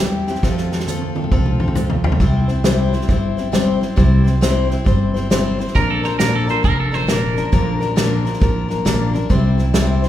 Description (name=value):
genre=honky-tonk and classic country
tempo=135 BPM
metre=4/4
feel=swing 64% on 8ths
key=C mixolydian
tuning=A4 = 440 Hz
part: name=picked steel-string acoustic guitar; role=accompaniment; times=0.0-10.1 s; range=Bb2 to C5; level=-19 LUFS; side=left 2 dB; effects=none
part: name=upright bass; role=bass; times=0.0-10.0 s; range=F1 to F2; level=-21 LUFS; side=right 1 dB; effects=none
part: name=natural country drum kit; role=drums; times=0.3-10.1 s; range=hi-hat, kick drum, snare drum, toms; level=-19 LUFS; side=right 1 dB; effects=none
part: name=twangy electric guitar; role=second line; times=5.8-8.4 s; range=A4 to C5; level=-23 LUFS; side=right 5 dB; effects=none
room=wet recital hall reverb, RT60 1.4 s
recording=recorded in a church or concert hall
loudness=-15 LUFS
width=side -12 dB against mid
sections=0.0-2.2 A section; 2.2-10.1 B section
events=drum fill 0.4-2.2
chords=0.4 F; 2.2 C; 5.8 Bb; 9.3 C